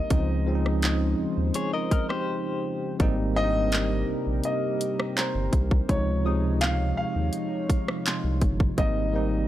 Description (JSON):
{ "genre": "contemporary R&B", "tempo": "83 BPM", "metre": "4/4", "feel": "straight", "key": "unclear", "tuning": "A4 = 440 Hz", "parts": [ { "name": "warm grand piano", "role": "melody", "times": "0.0-9.5 s", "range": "C5 to F5", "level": "-31 LUFS", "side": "left 1 dB", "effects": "analog delay" }, { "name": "bell-like tine electric piano", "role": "accompaniment", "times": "0.0-9.5 s", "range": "C3 to Eb4", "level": "-29 LUFS", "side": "right 1 dB", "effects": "medium stereo tremolo" }, { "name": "chorused pulse-width pad", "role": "sustained chords", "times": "0.0-9.5 s", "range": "C3 to Db5", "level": "-34 LUFS", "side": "equal", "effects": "none" }, { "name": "round analog bass", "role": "bass", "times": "0.0-9.5 s", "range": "G1 to Eb2", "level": "-27 LUFS", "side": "equal", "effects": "none" }, { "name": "trap drum kit", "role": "drums", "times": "0.1-8.9 s", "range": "handclaps, hi-hat, kick drum, rim click", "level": "-25 LUFS", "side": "equal", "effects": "overdrive" }, { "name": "soft round pluck", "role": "texture", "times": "0.8-9.1 s", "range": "Bb5 to F6", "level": "-40 LUFS", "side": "equal", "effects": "chorus, analog delay" }, { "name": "direct-recorded clean electric guitar", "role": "arpeggios", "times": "1.6-3.0 s", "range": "G4 to Eb5", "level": "-30 LUFS", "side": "left 4 dB", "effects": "tremolo, analog delay" } ], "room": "little or no reverb", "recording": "dry, gritty hardware recording", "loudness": "-23 LUFS", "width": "side -13 dB against mid", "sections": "0.0-9.5 A section", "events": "break 2.3-3.0", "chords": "0.1 Dbmaj9; 3.0 Abmaj9; 5.9 Dbmaj9; 8.8 Abmaj9" }